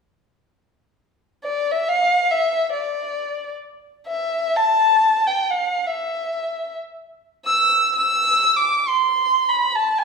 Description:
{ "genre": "persian", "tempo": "free time", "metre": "none", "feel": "none", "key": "E dastgah shur", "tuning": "A4 = 440 Hz", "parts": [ { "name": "dark violin", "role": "melody", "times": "1.4-10.0 s", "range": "D5 to E6", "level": "-17 LUFS", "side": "equal", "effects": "none" } ], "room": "wet large studio reverb, RT60 1.2 s", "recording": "band playing live in one room", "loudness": "-17 LUFS", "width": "side -5 dB against mid", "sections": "1.1-10.0 A section", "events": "none", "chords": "none" }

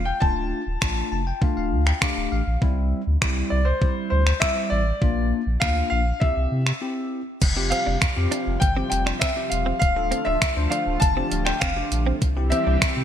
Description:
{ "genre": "dance-pop", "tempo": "100 BPM", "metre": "4/4", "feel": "straight", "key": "F major", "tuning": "A4 = 440 Hz", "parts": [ { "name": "clear concert grand piano", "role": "melody", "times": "0.0-13.0 s", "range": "C5 to A5", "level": "-26 LUFS", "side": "left 1 dB", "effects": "ping-pong delay" }, { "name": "saturated sub bass", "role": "bass", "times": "0.0-13.0 s", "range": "D1 to C3", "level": "-24 LUFS", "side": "equal", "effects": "sidechain pumping" }, { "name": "bell-like tine electric piano", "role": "accompaniment", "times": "0.2-13.0 s", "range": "G3 to A5", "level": "-29 LUFS", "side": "left 3 dB", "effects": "lush chorus, sidechain pumping" }, { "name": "gated 80s digital drum machine", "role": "drums", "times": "0.2-13.0 s", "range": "crash cymbal, finger snaps, hi-hat, kick drum", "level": "-23 LUFS", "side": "equal", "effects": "gated reverb" }, { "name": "lush unison pad", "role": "sustained chords", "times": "7.4-13.0 s", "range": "C3 to G4", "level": "-32 LUFS", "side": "right 2 dB", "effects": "chorus, phaser, sidechain pumping" }, { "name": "direct-recorded clean electric guitar", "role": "riff", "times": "7.6-12.8 s", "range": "C4 to D4", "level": "-32 LUFS", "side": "right 5 dB", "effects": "analog chorus" } ], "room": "light reverb", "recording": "bright 1980s-style digital production", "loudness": "-20 LUFS", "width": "side -10 dB against mid", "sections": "0.0-7.4 A section; 7.4-13.0 B section", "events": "tine electric piano fill 0.8-2.6; break 6.8-7.4", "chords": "0.2 Dm; 2.6 C; 5.0 Bb; 6.2 C; 7.4 Fsus2; 9.8 Dm; 12.2 C" }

